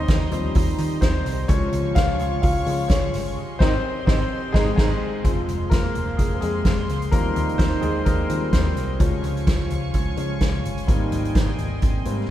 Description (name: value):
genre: piano-driven pop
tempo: 128 BPM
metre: 4/4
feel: swing 56% on 16ths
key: Ab major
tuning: A4 = 440 Hz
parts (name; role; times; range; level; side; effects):
- mellow French horn section; second line; 0.0-12.3 s; C3 to F4; -31 LUFS; right 4 dB; none
- clear concert grand piano; accompaniment; 0.0-12.3 s; F3 to F5; -26 LUFS; left 3 dB; none
- warm symphonic string section; sustained chords; 0.0-12.3 s; F4 to Db6; -35 LUFS; right 2 dB; none
- vintage muted picked electric bass; bass; 0.0-12.2 s; F1 to Eb3; -26 LUFS; equal; none
- soft-mallet drum kit; drums; 0.1-12.2 s; crash cymbal, hi-hat, kick drum, snare drum, toms; -22 LUFS; equal; none
room: moderate church reverb, RT60 3.8 s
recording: recorded in a church or concert hall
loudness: -19 LUFS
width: side -12 dB against mid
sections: 0.0-5.2 A section; 5.2-12.3 B section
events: grand piano solo 0.0-5.2, 5.2-12.3; band accent 3.4-5.2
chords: 0.0 Eb6; 1.5 Db; 3.4 Abmaj7; 5.2 Fm; 7.1 Eb6; 9.0 Db; 10.9 Abmaj7